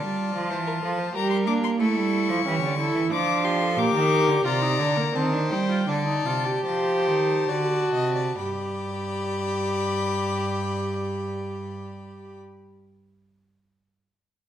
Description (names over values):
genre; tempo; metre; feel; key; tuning
classical, baroque-style fugue for string quartet; 64-93 BPM; 3/4; straight; unclear; A4 = 440 Hz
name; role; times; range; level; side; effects
rich violin; melody; 0.0-12.4 s; G5 to D6; -29 LUFS; left 10 dB; none
warm violin; second line; 0.0-12.4 s; F4 to Eb5; -31 LUFS; left 3 dB; none
rich viola; accompaniment; 0.0-12.4 s; Bb3 to G4; -27 LUFS; right 1 dB; none
rich cello; bass; 0.0-12.4 s; G2 to Bb3; -27 LUFS; right 3 dB; none
room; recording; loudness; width
wet recital hall reverb, RT60 1.4 s; none; -22 LUFS; side -10 dB against mid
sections
0.0-8.4 A section; 8.4-14.0 B section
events
slowing down 2.8-8.4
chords
0.0 Dm; 1.2 Gm; 1.8 A7; 3.1 Dm/F; 3.8 Gm/Bb; 5.1 Adim/Eb; 5.9 D7sus4; 7.5 D7; 8.4 G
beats
0.51 1.15 | 1.80 2.46 3.11 | 3.78 4.45 5.15 | 5.88 6.66 7.49 | 8.38 9.32 10.25 | 11.18 12.11